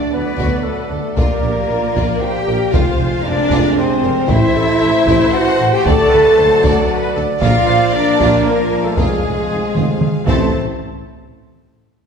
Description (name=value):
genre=cinematic, epic orchestral film score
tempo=115 BPM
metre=3/4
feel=straight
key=unclear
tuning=A4 = 440 Hz
part: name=rich symphonic violin section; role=melody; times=0.0-10.6 s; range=Ab4 to A5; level=-24 LUFS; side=left 3 dB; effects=none
part: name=mellow silver concert flute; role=second line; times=0.0-10.6 s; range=Ab4 to A5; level=-25 LUFS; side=equal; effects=none
part: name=warm symphonic violin section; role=second line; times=0.0-10.6 s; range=E4 to A5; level=-28 LUFS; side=left 2 dB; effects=none
part: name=clear symphonic viola section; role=accompaniment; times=0.0-10.6 s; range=C4 to D5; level=-24 LUFS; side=equal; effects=none
part: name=mellow French horn section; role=sustained chords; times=0.0-10.5 s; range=Ab3 to A4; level=-18 LUFS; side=left 1 dB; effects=none
part: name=warm trombone section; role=sustained chords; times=0.0-10.5 s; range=C3 to C4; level=-25 LUFS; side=right 2 dB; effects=none
part: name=dark trumpet section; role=stabs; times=0.0-10.5 s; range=C5 to D5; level=-24 LUFS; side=right 1 dB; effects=none
part: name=rich symphonic cello section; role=bass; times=0.0-10.6 s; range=Ab3 to A4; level=-23 LUFS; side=right 2 dB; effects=none
part: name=mellow tuba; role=bass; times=0.1-10.5 s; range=F1 to D2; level=-23 LUFS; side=right 2 dB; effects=none
part: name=rich symphonic double bass section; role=bass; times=0.1-10.6 s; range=F1 to D2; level=-22 LUFS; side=right 2 dB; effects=none
part: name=taiko ensemble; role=drums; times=0.4-11.3 s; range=none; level=-21 LUFS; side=equal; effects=none
room=wet scoring stage reverb, RT60 1.6 s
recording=heard from further back in the room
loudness=-12 LUFS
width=side -6 dB against mid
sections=0.0-10.5 A section; 10.5-12.1 B section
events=drum fill 9.8-10.5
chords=0.0 D; 1.2 Bb; 2.7 Fm; 4.3 Am; 5.9 D; 7.4 Bb; 9.0 Fm; 10.3 Am; 10.5 N.C.